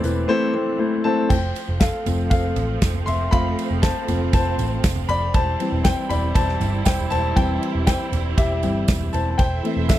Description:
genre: piano-driven pop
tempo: 119 BPM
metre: 4/4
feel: straight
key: unclear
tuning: A4 = 440 Hz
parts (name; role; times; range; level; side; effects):
- dark grand piano; accompaniment; 0.0-10.0 s; E3 to C6; -22 LUFS; left 3 dB; none
- rich studio string section; sustained chords; 0.0-10.0 s; E3 to E5; -30 LUFS; right 7 dB; none
- vintage muted picked electric bass; bass; 0.0-10.0 s; E1 to A1; -24 LUFS; right 1 dB; none
- natural country drum kit; drums; 0.0-10.0 s; crash cymbal, hi-hat, kick drum, ride cymbal, snare drum, toms; -21 LUFS; right 1 dB; none
- tambourine; percussion; 0.0-10.0 s; none; -39 LUFS; right 22 dB; none
room: little or no reverb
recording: dry, close 1970s-style studio recording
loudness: -18 LUFS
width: side -13 dB against mid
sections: 0.0-1.3 A section; 1.3-10.0 B section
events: grand piano solo 1.3-10.0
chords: 0.0 Am/E; 1.3 F; 5.3 C/E; 9.4 Am/E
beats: 0.29 0.80 | 1.30 1.81 2.31 2.82 | 3.33 3.83 4.33 4.84 | 5.35 5.85 6.36 6.86 | 7.37 7.87 8.38 8.88 | 9.39 9.89

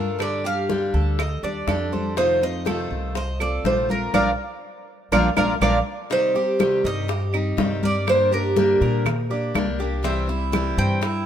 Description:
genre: latin, Cuban son and guajira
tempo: 122 BPM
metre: 4/4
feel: straight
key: unclear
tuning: A4 = 441 Hz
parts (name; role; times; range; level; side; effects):
- Cuban tres; melody; 0.0-11.3 s; A4 to G5; -24 LUFS; right 1 dB; none
- picked steel-string acoustic guitar; accompaniment; 0.0-11.1 s; C3 to G4; -28 LUFS; left 4 dB; none
- Cuban tres; arpeggios; 0.0-11.3 s; C4 to D5; -26 LUFS; right 3 dB; none
- upright bass; bass; 0.0-11.3 s; Bb1 to Bb2; -26 LUFS; equal; none
- bongos; percussion; 0.2-11.3 s; none; -31 LUFS; left 7 dB; none
- claves; percussion; 0.2-10.8 s; none; -28 LUFS; right 7 dB; none
- congas; percussion; 0.2-11.3 s; none; -27 LUFS; left 2 dB; none
room: light reverb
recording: minimal, uncompressed stereo recording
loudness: -19 LUFS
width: side -9 dB against mid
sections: 0.0-6.1 A section; 6.1-11.3 B section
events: band accent 4.1-6.1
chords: 0.2 Gsus2; 2.2 F7; 4.1 Bb; 6.1 Cm; 8.1 Gm; 10.0 C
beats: | 0.20 0.70 1.19 1.68 | 2.17 2.67 3.16 3.65 | 4.14 4.64 5.13 5.62 | 6.11 6.60 7.10 7.59 | 8.08 8.57 9.06 9.55 | 10.05 10.54 11.03

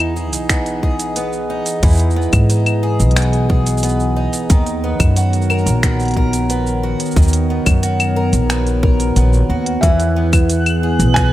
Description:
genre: folktronica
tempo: 90 BPM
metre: 4/4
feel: straight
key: E lydian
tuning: A4 = 443 Hz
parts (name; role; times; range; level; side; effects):
- warbly tape-like pad; sustained chords; 0.0-11.3 s; D#3 to D#5; -22 LUFS; equal; chorus, built-in reverb
- picked twelve-string acoustic guitar; arpeggios; 0.0-11.3 s; D#3 to A#4; -22 LUFS; right 1 dB; tape echo
- upright bass; bass; 0.0-11.3 s; A#1 to G#2; -16 LUFS; equal; none
- organic electronic drum kit; drums; 0.0-11.3 s; cabasa, claves, finger snaps, hi-hat; -22 LUFS; left 1 dB; none
- electronic kick drum; drums; 0.5-11.3 s; none; -15 LUFS; equal; none
- felt-muted upright piano; melody; 9.8-11.3 s; E5 to G#5; -20 LUFS; left 1 dB; none
- backwards swelling texture; texture; 9.9-11.3 s; F#6; -26 LUFS; right 2 dB; built-in reverb
room: studio reverb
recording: none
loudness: -13 LUFS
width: side -14 dB against mid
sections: 0.0-11.3 A section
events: none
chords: 0.0 Emaj7; 4.5 Bmaj7; 9.8 E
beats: 0.50 1.16 | 1.83 2.50 3.16 3.83 | 4.50 5.16 5.83 6.50 | 7.16 7.83 8.50 9.16 | 9.83 10.50 11.16

